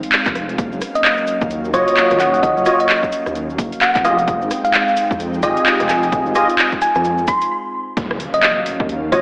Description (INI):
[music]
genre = UK garage, two-step garage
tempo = 130 BPM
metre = 4/4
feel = swing 60% on 16ths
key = Eb dorian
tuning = A4 = 440 Hz
[part]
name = airy breathy pad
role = sustained chords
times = 0.0-9.2 s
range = Gb3 to G5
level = -26 LUFS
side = equal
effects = chorus, sidechain pumping
[part]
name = garage drum kit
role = drums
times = 0.0-9.2 s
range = handclaps, hi-hat, rim click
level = -18 LUFS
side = equal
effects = overdrive
[part]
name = dark detuned saw bass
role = bass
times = 0.3-9.2 s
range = Eb1 to F2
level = -25 LUFS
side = equal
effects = none
[part]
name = electronic kick drum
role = drums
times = 0.3-9.2 s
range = none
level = -23 LUFS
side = equal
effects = overdrive
[part]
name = cabasa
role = percussion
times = 0.6-7.5 s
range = none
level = -38 LUFS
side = equal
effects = none
[part]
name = thumb-piano-like synth pluck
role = melody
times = 1.0-9.2 s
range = Db5 to C6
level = -18 LUFS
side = equal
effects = chorus, tape echo
[part]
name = percussive organ stab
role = stabs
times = 1.7-9.2 s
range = F4 to Eb5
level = -17 LUFS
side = equal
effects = ensemble chorus, tape echo
[part]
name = impact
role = sound effects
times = 8.0-9.2 s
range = none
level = -30 LUFS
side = equal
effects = none
[sound]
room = wet plate reverb, RT60 2.1 s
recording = dreamy mix soaked in reverb, AM radio sound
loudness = -14 LUFS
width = side -30 dB against mid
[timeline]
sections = 0.0-8.0 A section; 8.0-9.2 B section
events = stop 7.5-8.0; drop 8.0-9.2; impact 8.0-9.2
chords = 0.0 Fm7; 0.6 Ebm9; 4.0 Fm9; 8.0 Ebm9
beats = 0.12 | 0.58 1.05 1.51 1.97 | 2.43 2.89 3.35 3.81 | 4.28 4.74 5.20 5.66 | 6.12 6.58 7.05 7.51 | 7.97 8.43 8.89